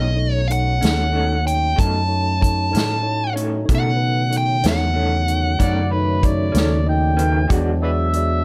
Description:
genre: slow blues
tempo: 63 BPM (dotted quarters)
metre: 12/8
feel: straight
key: unclear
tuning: A4 = 440 Hz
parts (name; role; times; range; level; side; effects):
- smooth overdriven lead guitar; melody; 0.0-5.9 s; D#5 to A5; -25 LUFS; equal; none
- bright tine electric piano; accompaniment; 0.0-8.4 s; D#4 to D#5; -29 LUFS; equal; none
- electric guitar through a small old amp; accompaniment; 0.0-7.7 s; B2 to F#4; -31 LUFS; equal; tremolo
- tonewheel organ; sustained chords; 0.0-8.4 s; C#3 to E4; -31 LUFS; equal; slow rotary speaker, overdrive, chorus vibrato
- fingered electric bass; bass; 0.0-8.4 s; B1 to B2; -23 LUFS; equal; none
- swinging big-band drum kit; drums; 0.5-8.3 s; hi-hat, kick drum, snare drum; -22 LUFS; equal; none
- overdriven harmonica; second line; 5.6-8.4 s; B4 to G5; -26 LUFS; equal; tape echo
room: light reverb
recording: none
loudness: -19 LUFS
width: mono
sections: 0.0-8.4 A section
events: none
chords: 0.0 B9; 7.5 E9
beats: 0.82 1.78 2.73 | 3.69 4.64 5.60 6.55 | 7.50

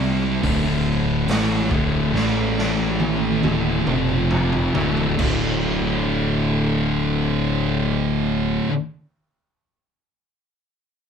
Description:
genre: stoner and doom metal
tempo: 68 BPM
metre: 4/4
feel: straight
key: D minor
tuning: A4 = 440 Hz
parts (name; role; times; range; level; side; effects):
- thick fuzz guitar; riff; 0.0-8.7 s; D2 to C4; -22 LUFS; left 8 dB; distortion
- thick fuzz guitar; riff; 0.0-8.7 s; D2 to C4; -23 LUFS; right 6 dB; distortion
- fuzz fingered electric bass; bass; 0.0-8.6 s; D1 to C2; -27 LUFS; right 1 dB; overdrive
- raw garage drum kit; drums; 0.4-5.4 s; crash cymbal, hi-hat, kick drum, snare drum, toms; -25 LUFS; right 1 dB; none
room: moderate studio reverb, RT60 0.5 s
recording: band playing live in one room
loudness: -18 LUFS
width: side -7 dB against mid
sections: 0.0-5.6 A section; 5.6-9.2 B section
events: slowing down 0.0-5.6; drum fill 2.1-5.6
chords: 0.4 D5; 2.1 A5; 3.4 D5; 3.9 F5; 4.7 D5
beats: 0.43 1.28 | 2.14 3.00 3.87 4.75 | 5.63 6.53 7.42 8.31

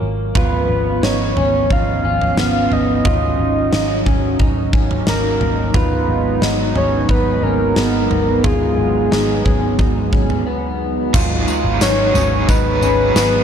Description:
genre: dream pop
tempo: 89 BPM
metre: 4/4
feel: straight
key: G# dorian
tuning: A4 = 439 Hz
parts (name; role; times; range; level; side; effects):
- warm analog pad; sustained chords; 0.0-13.4 s; E#3 to B4; -22 LUFS; right 1 dB; chorus
- electric guitar through a small old amp; arpeggios; 0.0-13.4 s; A#3 to E#4; -23 LUFS; equal; wide subtle chorus, ping-pong delay
- vintage muted picked electric bass; bass; 0.0-13.4 s; G#1; -21 LUFS; equal; none
- soft octave-layered synth lead; melody; 0.4-13.4 s; G#4 to E#5; -20 LUFS; equal; chorus, ping-pong delay
- huge arena drum kit; drums; 0.4-13.3 s; crash cymbal, kick drum, snare drum, tambourine, toms; -19 LUFS; equal; none
- crunchy overdriven guitar; accompaniment; 11.1-13.4 s; G#2 to G#4; -23 LUFS; right 5 dB; tremolo, wide subtle chorus
room: light reverb, small room ambience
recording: dark, warm production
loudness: -14 LUFS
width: side -8 dB against mid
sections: 0.0-11.1 A section; 11.1-13.4 B section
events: break 10.5-11.1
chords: 0.4 C#7/G#; 3.0 D#m7/G#; 5.7 G#m7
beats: | 0.35 1.03 1.70 2.38 | 3.05 3.72 4.40 5.07 | 5.75 6.42 7.09 7.77 | 8.44 9.12 9.79 10.47 | 11.14 11.81 12.49 13.16

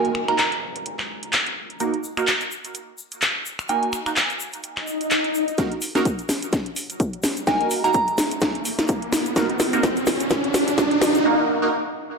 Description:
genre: bass house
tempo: 127 BPM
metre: 4/4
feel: swing 57% on 16ths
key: Eb minor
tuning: A4 = 440 Hz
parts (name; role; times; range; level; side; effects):
- soft synth bell; melody; 0.0-0.5, 3.7-3.9, 7.5-8.0 s; Ab5 to Bb5; -26 LUFS; right 2 dB; chorus, dub echo
- band-passed chord stab; stabs; 0.0-11.7 s; Bb3 to Bb4; -26 LUFS; right 3 dB; phaser, ensemble chorus, sidechain pumping, dub echo
- house drum kit; drums; 0.0-11.2 s; finger snaps, handclaps, hi-hat, snare drum; -23 LUFS; left 1 dB; none
- downlifter, swell and riser; sound effects; 0.0-11.3 s; none; -25 LUFS; equal; none
- egg shaker; percussion; 1.8-11.2 s; none; -36 LUFS; left 4 dB; none
- electronic kick drum; drums; 5.6-10.9 s; none; -24 LUFS; left 1 dB; high-pass filter on kick
room: wet digital room reverb, RT60 1.1 s, studio ambience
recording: dark, warm production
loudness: -20 LUFS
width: side -4 dB against mid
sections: 0.0-5.6 A section; 5.6-12.2 B section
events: swell 4.8-5.6; build-up 5.6-12.2; drum fill 5.6-11.3; riser 5.6-11.3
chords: 0.0 Ebm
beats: 0.39 0.86 1.33 | 1.80 2.27 2.75 3.22 | 3.69 4.17 4.64 5.11 | 5.58 6.05 6.53 7.00 | 7.47 7.94 8.42 8.89 | 9.36 9.83 10.31 10.78 | 11.25

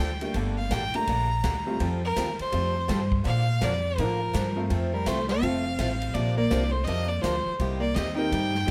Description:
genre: country, western swing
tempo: 166 BPM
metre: 4/4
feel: swing 63% on 8ths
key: Bb major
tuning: A4 = 439 Hz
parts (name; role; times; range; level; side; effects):
- clear fiddle; melody; 0.0-8.7 s; Bb4 to Bb5; -32 LUFS; equal; none
- picked swing-style acoustic guitar; accompaniment; 0.0-8.7 s; C3 to Bb4; -37 LUFS; equal; none
- upright bass; bass; 0.0-8.7 s; F1 to Bb2; -30 LUFS; equal; none
- bright upright piano; accompaniment; 0.2-8.7 s; F3 to Bb4; -36 LUFS; equal; none
- swinging big-band drum kit; drums; 0.2-8.7 s; hi-hat, kick drum, ride cymbal, snare drum; -37 LUFS; equal; none
- archtop guitar, miked and amplified; second line; 4.0-8.7 s; F3 to Eb4; -33 LUFS; equal; none
room: light reverb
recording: none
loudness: -26 LUFS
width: mono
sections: 0.0-8.7 A section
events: none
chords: 0.3 Gmadd9; 1.8 Fadd9; 3.2 Bb; 4.7 F; 6.1 Bbadd9; 7.6 Cm7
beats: | 0.34 0.71 1.07 1.44 | 1.80 2.16 2.52 2.89 | 3.25 3.61 3.98 4.34 | 4.70 5.06 5.42 5.79 | 6.15 6.51 6.87 7.23 | 7.59 7.95 8.32 8.68

